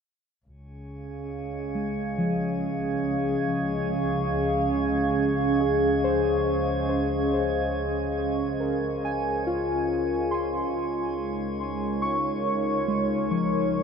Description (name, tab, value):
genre	ambient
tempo	70 BPM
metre	3/4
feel	straight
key	Db major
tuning	A4 = 440 Hz
part	warbly tape-like pad	sustained chords	1.1-13.8 s	Ab3 to F5	-27 LUFS	right 1 dB	chorus, built-in reverb
part	warm studio double bass section	bass	0.5-13.8 s	Db2	-34 LUFS	left 1 dB	tube saturation
part	drifting glass-harmonics texture	texture	1.1-13.8 s	Db4 to Db5	-35 LUFS	right 2 dB	chorus, built-in reverb
part	muted felt-like synth keys	arpeggios	1.7-13.8 s	F3 to Db6	-28 LUFS	left 1 dB	chorus, ping-pong delay
room	wet huge ambient reverb, RT60 7.8 s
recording	none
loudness	-24 LUFS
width	side -6 dB against mid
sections	0.5-13.8 A section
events	fade-out on double bass section 0.5-13.8; fade-out on synth texture 0.5-13.8; filter sweep on ambient pad 0.5-13.8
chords	0.5 Db6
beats	| 0.47 1.32 2.18 | 3.04 3.89 4.75 | 5.61 6.46 7.32 | 8.18 9.04 9.89 | 10.75 11.61 12.46 | 13.32